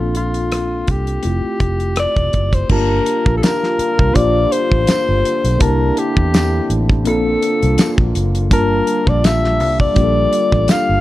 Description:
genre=lush 1970s-style soul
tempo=83 BPM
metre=4/4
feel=swing 54% on 16ths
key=G dorian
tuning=A4 = 440 Hz
part: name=breathy alto saxophone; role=melody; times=0.0-11.0 s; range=F4 to F5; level=-18 LUFS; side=left 2 dB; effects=none
part: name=mellow tine electric piano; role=accompaniment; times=0.0-11.0 s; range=G3 to A5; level=-21 LUFS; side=left 1 dB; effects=medium stereo tremolo
part: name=vintage muted fingered electric bass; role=bass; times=0.0-11.0 s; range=E1 to E2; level=-18 LUFS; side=equal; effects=none
part: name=damped 70s drum kit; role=drums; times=0.1-10.9 s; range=crash cymbal, hi-hat, kick drum, rim click, snare drum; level=-17 LUFS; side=equal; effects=none
part: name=mellow French horn section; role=sustained chords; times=2.7-11.0 s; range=D3 to F4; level=-25 LUFS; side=right 1 dB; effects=none
part: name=tambourine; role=percussion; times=3.4-10.9 s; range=none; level=-32 LUFS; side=right 5 dB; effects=none
room=little or no reverb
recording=dark, warm production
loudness=-13 LUFS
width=side -15 dB against mid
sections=0.0-2.7 A section; 2.7-11.0 B section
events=none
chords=0.0 Bbmaj9; 1.2 Fmaj9; 2.7 Gm9; 5.6 C13; 7.1 Bbmaj9; 8.5 Gm9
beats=0.52 1.25 1.98 | 2.70 3.43 4.16 4.88 | 5.61 6.33 7.06 7.78 | 8.51 9.23 9.96 10.69

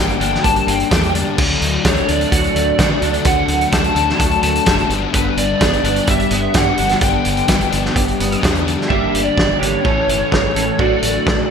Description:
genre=indie rock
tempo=128 BPM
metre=4/4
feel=straight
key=unclear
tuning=A4 = 440 Hz
part: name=lead guitar through a small cranked amp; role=melody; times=0.0-11.5 s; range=B4 to A5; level=-19 LUFS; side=equal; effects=overdrive, lush chorus
part: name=overdriven semi-hollow guitar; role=riff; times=0.0-11.5 s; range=G2 to F#4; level=-20 LUFS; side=left 10 dB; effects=analog chorus
part: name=raw garage guitar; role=riff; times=0.0-11.5 s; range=G2 to A4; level=-23 LUFS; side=right 9 dB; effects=overdrive, ensemble chorus
part: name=deep dub fingered electric bass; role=bass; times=0.0-11.4 s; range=F#1 to D3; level=-23 LUFS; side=right 1 dB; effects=none
part: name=loose indie drum kit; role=drums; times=0.1-11.4 s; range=crash cymbal, hi-hat, kick drum, snare drum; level=-18 LUFS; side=right 1 dB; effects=gated reverb
room=light reverb, small room ambience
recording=bright 1980s-style digital production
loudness=-13 LUFS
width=side -6 dB against mid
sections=0.0-8.9 A section; 8.9-11.5 B section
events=none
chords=0.0 Gm; 1.4 D; 4.9 G; 8.9 Gm; 9.8 A; 10.8 D/A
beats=0.44 0.91 | 1.38 1.85 2.32 2.79 | 3.26 3.73 4.20 4.67 | 5.14 5.61 6.08 6.55 | 7.02 7.49 7.96 8.43 | 8.90 9.37 9.84 10.32 | 10.79 11.26

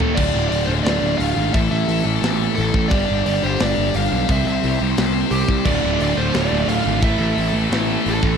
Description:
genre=heavy metal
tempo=175 BPM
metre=4/4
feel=straight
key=D minor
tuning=A4 = 440 Hz
part: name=high-gain lead guitar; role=melody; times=0.0-8.4 s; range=G4 to F5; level=-24 LUFS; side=right 4 dB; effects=distortion, tape echo
part: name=overdriven electric guitar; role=riff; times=0.0-8.4 s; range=D2 to C4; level=-23 LUFS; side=equal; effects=none
part: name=scooped high-gain guitar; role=riff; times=0.0-8.4 s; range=Eb2 to C5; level=-25 LUFS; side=left 18 dB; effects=distortion
part: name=scooped high-gain guitar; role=riff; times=0.0-0.2, 5.7-8.4 s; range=D2 to A3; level=-26 LUFS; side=right 15 dB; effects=distortion
part: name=tight metal drum kit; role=drums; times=0.0-8.3 s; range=crash cymbal, hi-hat, kick drum, snare drum, toms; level=-24 LUFS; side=equal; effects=none
part: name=fuzz picked electric bass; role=bass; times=0.2-8.3 s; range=D1 to C2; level=-22 LUFS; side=equal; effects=overdrive
room=little or no reverb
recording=dark, warm production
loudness=-16 LUFS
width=side -7 dB against mid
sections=0.2-8.4 A section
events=break 0.0; drum fill 0.0; half time 0.2-8.4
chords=0.2 Dm; 1.5 A5; 2.9 G5; 4.3 C; 5.7 Dm; 7.0 A5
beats=| 0.17 0.52 0.86 1.20 | 1.54 1.88 2.23 2.57 | 2.91 3.25 3.59 3.94 | 4.28 4.62 4.96 5.31 | 5.65 5.99 6.33 6.68 | 7.02 7.36 7.71 8.05

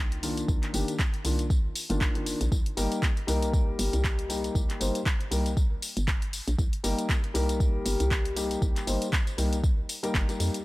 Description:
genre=deep house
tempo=118 BPM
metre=4/4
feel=swing 57% on 16ths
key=unclear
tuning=A4 = 440 Hz
part: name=felt-muted upright piano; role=stabs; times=0.0-10.6 s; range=Eb3 to C5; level=-31 LUFS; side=left 2 dB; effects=sidechain pumping, analog delay
part: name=hollow knocking FM bass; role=bass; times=0.0-10.5 s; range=G1 to F2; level=-30 LUFS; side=equal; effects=sidechain pumping
part: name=deep house drum kit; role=drums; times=0.1-10.6 s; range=handclaps, hi-hat, tambourine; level=-33 LUFS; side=left 1 dB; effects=none
part: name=electronic kick drum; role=drums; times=0.5-10.3 s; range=none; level=-26 LUFS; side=equal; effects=none
room=little or no reverb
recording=none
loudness=-25 LUFS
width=side -20 dB against mid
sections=0.0-10.6 A section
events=drop 0.0-10.6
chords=0.0 Cm11; 2.5 Eb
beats=| 0.48 0.99 1.50 2.01 | 2.52 3.03 3.54 4.04 | 4.55 5.06 5.57 6.08 | 6.59 7.09 7.60 8.11 | 8.62 9.13 9.64 10.14

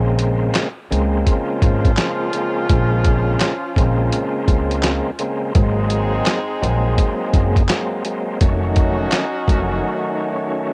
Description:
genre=hip hop, boom-bap hip-hop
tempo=84 BPM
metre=4/4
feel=swing 62% on 16ths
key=Bb minor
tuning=A4 = 440 Hz
part: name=overdriven tonewheel organ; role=accompaniment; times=0.0-10.7 s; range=Db3 to Db4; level=-24 LUFS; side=equal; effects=fast rotary speaker, cassette tape, high-pass filter, low-pass filter
part: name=upright bass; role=bass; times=0.0-9.8 s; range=F1 to Db2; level=-22 LUFS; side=equal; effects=tube saturation
part: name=boom bap sampler-style drum kit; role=drums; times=0.2-9.7 s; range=handclaps, hi-hat, kick drum, snare drum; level=-19 LUFS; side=equal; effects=vintage 12-bit sampler grit, cassette tape
part: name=clear horn section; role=stabs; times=1.3-10.7 s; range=F3 to Ab4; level=-27 LUFS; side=equal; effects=high-pass filter, low-pass filter, cassette tape, analog delay
room=small room ambience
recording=home recording on cassette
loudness=-18 LUFS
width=mono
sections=0.0-10.7 A section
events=break 9.8-10.7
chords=0.0 Bbm9; 5.6 Ab9; 8.4 F7b9b13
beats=0.55 1.27 1.98 | 2.69 3.41 4.12 4.84 | 5.55 6.27 6.98 7.70 | 8.41 9.12 9.84 10.55

